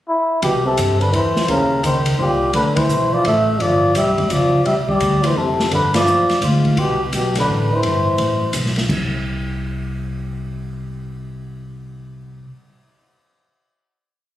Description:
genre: jazz, small-group swing and bop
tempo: 170 BPM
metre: 3/4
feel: swing 64% on 8ths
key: C major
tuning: A4 = 437 Hz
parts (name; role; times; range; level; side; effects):
- trumpet with cup mute; melody; 0.1-8.6 s; E4 to E5; -20 LUFS; left 1 dB; none
- warm trombone; second line; 0.4-8.6 s; Ab2 to A3; -19 LUFS; right 1 dB; none
- upright bass; bass; 0.4-12.4 s; F1 to G2; -22 LUFS; equal; none
- open jazz drum kit; drums; 0.4-9.0 s; crash cymbal, hi-hat, kick drum, ride cymbal, snare drum; -25 LUFS; left 1 dB; none
room: light reverb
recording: recorded on a phone in the room, studio reverb, compression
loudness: -15 LUFS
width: side -13 dB against mid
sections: 0.0-0.4 pickup bar; 0.4-8.9 A section; 8.9-11.0 final note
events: band accent 2.7, 5.9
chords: 0.4 C; 1.5 Eb6; 2.5 Dsus2; 3.6 G7; 4.7 Csus2; 5.7 G5; 6.8 Cmaj7; 8.9 N.C.

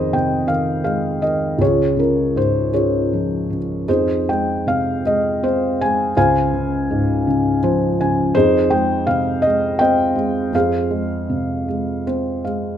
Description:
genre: classical, lyrical solo piano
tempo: 54 BPM (dotted quarters)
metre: 6/8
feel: uneven beats, rubato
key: F minor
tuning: A4 = 439 Hz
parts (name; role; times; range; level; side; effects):
- felt-muted upright piano; solo; 0.0-12.8 s; Db2 to Ab5; -16 LUFS; equal; none
room: moderate recital hall reverb, RT60 1.6 s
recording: close, detailed microphones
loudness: -16 LUFS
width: side -10 dB against mid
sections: 0.0-12.8 A section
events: felt piano fill 7.3-8.3, 11.7-12.8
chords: 0.0 Fm7; 1.6 Db; 3.9 Fm7; 6.2 Dbmaj7; 8.3 Fm7; 10.5 Fm

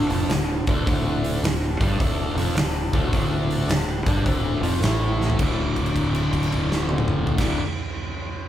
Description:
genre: blues rock power trio and southern rock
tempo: 106 BPM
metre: 4/4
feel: swing 66% on 8ths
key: D minor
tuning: A4 = 440 Hz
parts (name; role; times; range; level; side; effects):
- overdriven slide guitar; melody; 0.0-4.8 s; D4; -32 LUFS; right 3 dB; none
- fuzz guitar; riff; 0.0-7.6 s; D2 to A3; -24 LUFS; left 1 dB; distortion
- growling fingered electric bass; bass; 0.0-7.6 s; D1 to A1; -26 LUFS; equal; overdrive
- huge arena drum kit; drums; 0.1-7.5 s; crash cymbal, hi-hat, kick drum, snare drum, toms; -24 LUFS; equal; none
room: light reverb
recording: band playing live in one room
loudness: -20 LUFS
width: side -11 dB against mid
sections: 0.0-5.4 A section; 5.4-7.6 B section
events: drum fill 5.1; held note 5.4-7.3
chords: 0.0 Dm; 5.4 D5

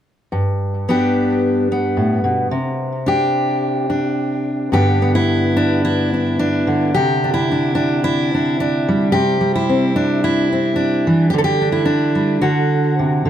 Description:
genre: folk, solo fingerstyle acoustic guitar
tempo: 109 BPM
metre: 4/4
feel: rubato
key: G major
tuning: A4 = 441 Hz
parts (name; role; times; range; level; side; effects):
- fingerpicked steel-string acoustic guitar; solo; 0.3-13.3 s; G2 to A4; -15 LUFS; equal; tape echo
room: moderate studio reverb, RT60 0.8 s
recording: none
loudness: -15 LUFS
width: side -10 dB against mid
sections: 0.3-4.7 A section; 4.7-13.3 B section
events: none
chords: 0.3 Gadd9; 2.5 Csus2; 4.7 G; 6.9 Csus2; 11.3 Dsus4; 12.4 D

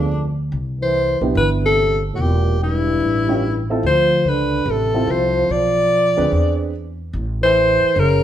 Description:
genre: jazz, small-group swing and bop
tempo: 145 BPM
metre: 4/4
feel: swing 66% on 8ths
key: A minor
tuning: A4 = 440 Hz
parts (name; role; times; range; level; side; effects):
- edgy alto saxophone; melody; 0.0-8.2 s; D4 to D5; -18 LUFS; left 1 dB; none
- breathy trombone; second line; 0.0-8.2 s; F2 to F3; -24 LUFS; right 2 dB; none
- dark baby grand piano; accompaniment; 0.0-6.7 s; B3 to B4; -23 LUFS; right 3 dB; none
- upright bass; bass; 0.0-8.2 s; E1 to E2; -21 LUFS; equal; none
room: moderate large studio reverb, RT60 1.0 s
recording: band playing live in one room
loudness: -15 LUFS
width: side -11 dB against mid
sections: 0.0-8.2 A section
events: none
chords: 0.0 G7(no3) (rootless); 0.5 Cmaj7; 2.2 Edim; 3.0 A7b13; 3.8 Dm7; 5.5 Bdim; 6.3 E7b13; 7.1 Am

